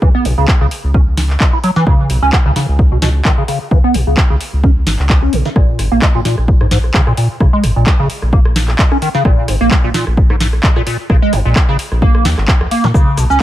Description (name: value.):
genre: acid house.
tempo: 130 BPM.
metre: 4/4.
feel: swing 55% on 16ths.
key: Bb minor pentatonic.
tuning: A4 = 440 Hz.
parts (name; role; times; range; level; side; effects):
liquid acid bass; riff; 0.0-13.4 s; Bb1 to Fb4; -16 LUFS; right 1 dB; phaser, overdrive, analog chorus, sidechain pumping, digital delay.
round analog bass; bass; 0.0-13.4 s; Ab1 to Bb2; -15 LUFS; equal; sidechain pumping.
electronic kick drum; drums; 0.0-13.4 s; none; -11 LUFS; equal; none.
booming analog drum machine; drums; 0.3-13.4 s; cabasa, handclaps, hi-hat, rim click, snare drum; -19 LUFS; equal; none.
room: digital ambience.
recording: none.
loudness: -10 LUFS.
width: side -13 dB against mid.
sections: 0.0-13.4 A section.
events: filter sweep on acid bass 0.0-13.4.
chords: 0.0 Db7(no3); 5.6 Bb7(no3).